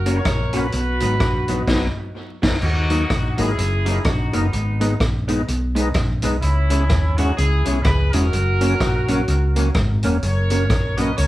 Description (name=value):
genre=ska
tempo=126 BPM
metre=4/4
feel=swing 60% on 8ths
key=unclear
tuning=A4 = 441 Hz
part: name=clear horn section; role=melody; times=0.0-11.3 s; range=B3 to D#5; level=-25 LUFS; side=equal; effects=none
part: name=hollow-body short-scale fingered electric bass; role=bass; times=0.0-11.3 s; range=E1 to D#2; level=-20 LUFS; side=equal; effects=none
part: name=vintage hollow-body jazz guitar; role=accompaniment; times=0.1-11.1 s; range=E3 to F#4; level=-27 LUFS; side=right 2 dB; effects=tape echo
part: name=tonewheel organ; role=stabs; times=0.1-11.1 s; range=C#4 to D#5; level=-27 LUFS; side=left 2 dB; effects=overdrive, chorus vibrato, slow rotary speaker
part: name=street-band drum kit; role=drums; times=0.1-11.3 s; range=crash cymbal, hi-hat, kick drum, rim click, snare drum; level=-22 LUFS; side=equal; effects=none
room=moderate studio reverb, RT60 0.9 s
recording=band playing live in one room, vinyl crackle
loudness=-17 LUFS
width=side -16 dB against mid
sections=0.0-2.6 A section; 2.6-11.3 B section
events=band accent 1.7-2.6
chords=0.0 F#; 0.7 B; 2.6 D#m; 4.5 G#m; 6.4 C#m; 8.3 F#